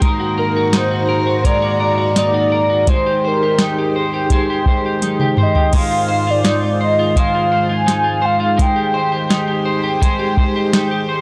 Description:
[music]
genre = dream pop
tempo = 84 BPM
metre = 4/4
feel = straight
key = Ab lydian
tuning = A4 = 440 Hz
[part]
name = string machine, full ensemble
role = sustained chords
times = 0.0-11.2 s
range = Ab2 to C5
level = -22 LUFS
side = equal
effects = ensemble chorus
[part]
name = clean electric guitar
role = arpeggios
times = 0.0-11.2 s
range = Ab3 to C5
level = -22 LUFS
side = equal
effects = analog chorus, tape echo
[part]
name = soft vintage rhythm box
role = drums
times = 0.0-10.9 s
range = crash cymbal, hi-hat, kick drum, snare drum, toms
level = -18 LUFS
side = equal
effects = overdrive
[part]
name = warm velvety synth lead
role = melody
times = 0.4-9.7 s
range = Bb4 to Ab5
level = -20 LUFS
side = equal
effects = chorus
[sound]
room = little or no reverb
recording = dry, gritty hardware recording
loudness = -16 LUFS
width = mono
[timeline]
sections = 0.0-11.2 A section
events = drum fill 5.0-5.7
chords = 0.0 Ebm/Ab; 2.9 Abmaj7; 5.7 Fm7/Ab; 8.6 Abmaj7

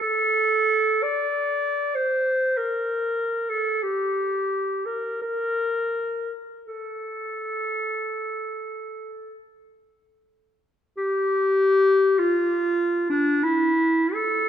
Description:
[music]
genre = classical, free, expressive piece for unaccompanied clarinet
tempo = 36-51 BPM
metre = 4/4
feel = rubato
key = unclear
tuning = A4 = 438 Hz
[part]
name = warm clarinet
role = solo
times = 0.0-14.5 s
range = D4 to D5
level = -21 LUFS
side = equal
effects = none
[sound]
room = moderate concert hall reverb, RT60 2.1 s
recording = dark, warm production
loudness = -21 LUFS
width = side -9 dB against mid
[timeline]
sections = 0.0-11.0 A section; 11.0-14.5 B section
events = none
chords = none

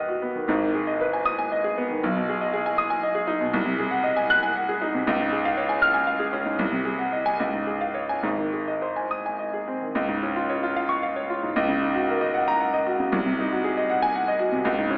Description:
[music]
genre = classical, virtuoso piano study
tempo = 68-81 BPM (dotted quarters)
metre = 6/8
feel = rubato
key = Db major from 3.5 s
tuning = A4 = 440 Hz
[part]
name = clear grand piano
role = solo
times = 0.0-15.0 s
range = D#1 to Gb6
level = -22 LUFS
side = equal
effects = none
[sound]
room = wet recital hall reverb, RT60 1.5 s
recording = recorded in a church or concert hall, AM radio sound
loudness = -22 LUFS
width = side -31 dB against mid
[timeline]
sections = 0.0-10.0 A section; 10.0-15.0 B section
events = none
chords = 0.5 G#m; 2.0 G#m/B; 3.5 Ab7/C; 5.1 Db; 6.6 Ab7/C; 7.4 Db; 8.2 Ab; 10.0 Db; 11.6 Ebm7/Db; 13.1 Ab7/C

